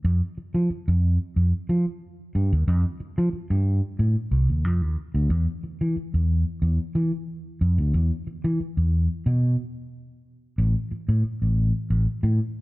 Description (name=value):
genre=funk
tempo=91 BPM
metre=4/4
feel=straight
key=unclear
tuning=A4 = 440 Hz
part: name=fingered electric bass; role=solo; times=0.0-12.4 s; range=A1 to F3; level=-21 LUFS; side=equal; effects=none
room=moderate echo chamber reverb, RT60 2.0 s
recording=none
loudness=-22 LUFS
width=side -21 dB against mid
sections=0.0-5.3 A section; 5.3-12.6 B section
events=none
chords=none